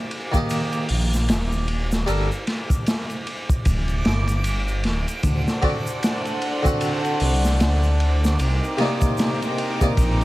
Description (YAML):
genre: trip hop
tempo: 76 BPM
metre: 4/4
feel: swing 59% on 16ths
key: G harmonic minor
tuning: A4 = 440 Hz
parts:
  - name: backwards swelling texture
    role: texture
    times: 0.0-10.2 s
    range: D6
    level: -36 LUFS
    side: right 3 dB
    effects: built-in reverb
  - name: crunchy breakbeat drum kit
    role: drums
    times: 0.1-10.2 s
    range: hi-hat, kick drum, ride cymbal, snare drum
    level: -23 LUFS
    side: equal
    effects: none
  - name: harpsichord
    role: accompaniment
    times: 0.3-9.9 s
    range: C3 to F#5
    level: -26 LUFS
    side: equal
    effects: tremolo, vintage 12-bit sampler grit, tape echo
  - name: egg shaker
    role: percussion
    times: 0.3-10.2 s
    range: none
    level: -41 LUFS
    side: equal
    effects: none
  - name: dark detuned saw bass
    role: bass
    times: 0.9-10.2 s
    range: D1 to D2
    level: -21 LUFS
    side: equal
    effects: none
  - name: warm studio violin section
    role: sustained chords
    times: 5.2-10.2 s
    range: C4 to D6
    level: -26 LUFS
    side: equal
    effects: none
room: small room ambience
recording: vinyl crackle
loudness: -19 LUFS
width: side -18 dB against mid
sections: 0.0-10.2 A section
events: none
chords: 0.0 Ebmaj7; 2.1 G5; 5.2 D7; 8.4 Cm9